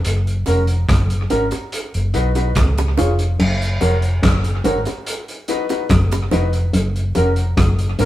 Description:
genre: roots reggae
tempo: 72 BPM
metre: 4/4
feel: straight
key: F# major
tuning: A4 = 440 Hz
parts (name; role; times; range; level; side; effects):
- vintage muted fingered electric bass; bass; 0.0-8.1 s; E#1 to C#2; -18 LUFS; equal; none
- crunchy breakbeat drum kit; drums; 0.0-8.1 s; crash cymbal, hi-hat, kick drum, rim click; -21 LUFS; equal; none
- warm baby grand piano; stabs; 0.5-8.1 s; C#4 to C#5; -22 LUFS; left 1 dB; none
- bongos; percussion; 0.5-8.1 s; none; -25 LUFS; right 3 dB; none
- electric guitar with an envelope filter; riff; 3.4-8.1 s; E#2 to G#2; -21 LUFS; left 1 dB; none
room: moderate stone room reverb, RT60 1.3 s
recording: band playing live in one room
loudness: -15 LUFS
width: side -14 dB against mid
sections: 0.0-3.4 A section; 3.4-8.1 A section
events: none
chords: 0.0 F#; 1.7 B; 2.6 C#; 3.4 F#; 5.1 B; 6.7 F#

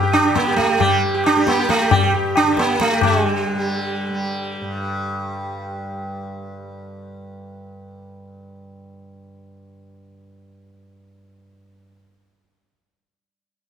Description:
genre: indian classical, Hindustani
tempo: 136 BPM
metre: 5/4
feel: straight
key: unclear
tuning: A4 = 440 Hz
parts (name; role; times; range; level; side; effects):
- sitar; melody; 0.0-6.7 s; G3 to G4; -18 LUFS; right 2 dB; none
- tanpura; drone; 0.0-11.8 s; G2 to G3; -28 LUFS; right 1 dB; none
- tabla; percussion; 0.1-3.2 s; none; -21 LUFS; left 6 dB; none
room: moderate recital hall reverb, RT60 1.3 s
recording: none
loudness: -17 LUFS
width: side -8 dB against mid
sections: 0.0-3.0 A section; 3.0-5.2 B section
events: none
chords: none

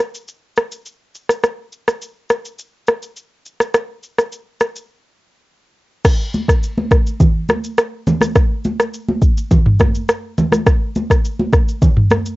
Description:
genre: afrobeats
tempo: 104 BPM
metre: 4/4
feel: straight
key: none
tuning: none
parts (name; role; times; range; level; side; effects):
- afro-pop drum kit; drums; 0.0-12.4 s; crash cymbal, kick drum, rim click, shaker, toms; -14 LUFS; equal; cassette tape
- congas; percussion; 6.3-12.2 s; none; -19 LUFS; right 1 dB; none
room: light reverb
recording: home recording on cassette, nothing above 7.7 kHz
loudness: -15 LUFS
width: side -20 dB against mid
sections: 0.0-6.0 A section; 6.0-12.4 B section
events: break 4.9-6.0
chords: none

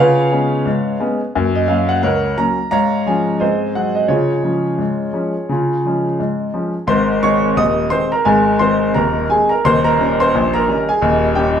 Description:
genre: ragtime piano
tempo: 87 BPM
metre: 2/4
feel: swing 57% on 16ths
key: Db major, Ab major from 6.9 s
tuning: A4 = 440 Hz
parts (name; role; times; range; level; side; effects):
- clear concert grand piano; solo; 0.0-11.6 s; Eb1 to Eb6; -14 LUFS; equal; none
room: wet stone room reverb, RT60 1.1 s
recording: band playing live in one room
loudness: -14 LUFS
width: side -8 dB against mid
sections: 0.0-6.9 A section; 6.9-11.6 B section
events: none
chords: 0.0 Db7; 1.3 Gb; 2.7 Db/Ab; 3.4 Ab7; 4.1 Db; 6.9 Ab; 9.6 Eb7

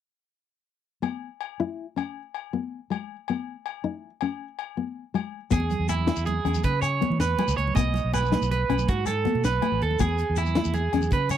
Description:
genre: highlife guitar band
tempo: 107 BPM (dotted quarters)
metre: 12/8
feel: straight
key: E major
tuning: A4 = 441 Hz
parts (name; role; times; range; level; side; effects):
- nylon-string guitar; accompaniment; 1.0-11.2 s; G#3 to E4; -29 LUFS; left 8 dB; none
- agogo bells; percussion; 1.0-11.4 s; none; -37 LUFS; left 18 dB; none
- electric guitar at the edge of break-up; arpeggios; 5.5-11.4 s; E4 to D#5; -27 LUFS; right 6 dB; tape echo
- fingered electric bass; bass; 5.5-11.4 s; A1 to E3; -26 LUFS; equal; none
- tight funk drum kit; drums; 5.5-11.4 s; hi-hat, kick drum, snare drum; -27 LUFS; equal; none
- congas; percussion; 5.5-11.4 s; none; -33 LUFS; right 7 dB; none
- shekere; percussion; 5.5-11.4 s; none; -35 LUFS; left 5 dB; none
room: little or no reverb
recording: dry, close 1970s-style studio recording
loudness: -24 LUFS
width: side -10 dB against mid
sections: 1.0-5.5 A section; 5.5-11.4 B section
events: none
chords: 1.0 E; 3.3 B; 5.5 E; 7.8 B7; 10.0 E

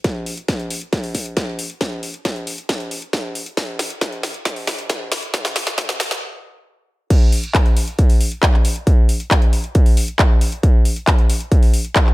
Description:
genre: trance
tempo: 136 BPM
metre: 4/4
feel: straight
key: none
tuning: none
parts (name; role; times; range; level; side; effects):
- electronic kick drum; drums; 0.0-12.0 s; none; -16 LUFS; equal; distortion
- techno drum kit; drums; 0.0-12.1 s; crash cymbal, handclaps, hi-hat, snare drum; -22 LUFS; left 1 dB; high-pass filter on hats, high-pass filter on snare, high-pass filter on cymbals
room: digital ambience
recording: high-pass filter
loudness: -16 LUFS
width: side -19 dB against mid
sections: 0.0-7.1 A section; 7.1-12.1 B section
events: build-up 0.0-7.1; filter sweep 0.0-7.1; drum fill 0.0-6.2; stop 6.2-7.1; drop 7.1-12.1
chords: none

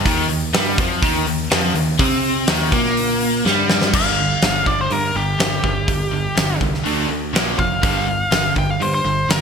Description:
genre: hard rock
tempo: 123 BPM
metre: 4/4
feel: straight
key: G minor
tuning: A4 = 445 Hz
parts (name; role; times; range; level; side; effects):
- crunchy overdriven guitar; riff; 0.0-3.9 s; Eb3 to C4; -23 LUFS; left 2 dB; tremolo
- overdriven semi-hollow guitar; riff; 0.0-9.4 s; G2 to D4; -24 LUFS; right 11 dB; none
- tight distorted guitar; riff; 0.0-9.4 s; G2 to D4; -24 LUFS; left 10 dB; distortion
- modern bright picked electric bass; bass; 0.0-9.4 s; F1 to C3; -24 LUFS; equal; none
- huge arena drum kit; drums; 0.1-9.4 s; crash cymbal, hi-hat, kick drum, snare drum; -20 LUFS; equal; gated reverb
- biting lead guitar; melody; 4.0-9.4 s; G4 to G5; -21 LUFS; left 1 dB; overdrive
room: light reverb, small room ambience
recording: bright 1980s-style digital production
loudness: -16 LUFS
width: side -6 dB against mid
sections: 0.0-3.9 A section; 3.9-9.4 B section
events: drum fill 3.4-3.9; lead electric guitar solo 3.9-9.4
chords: 0.1 Eb5; 3.9 G5; 6.9 D5; 7.3 Bb5; 7.8 G5

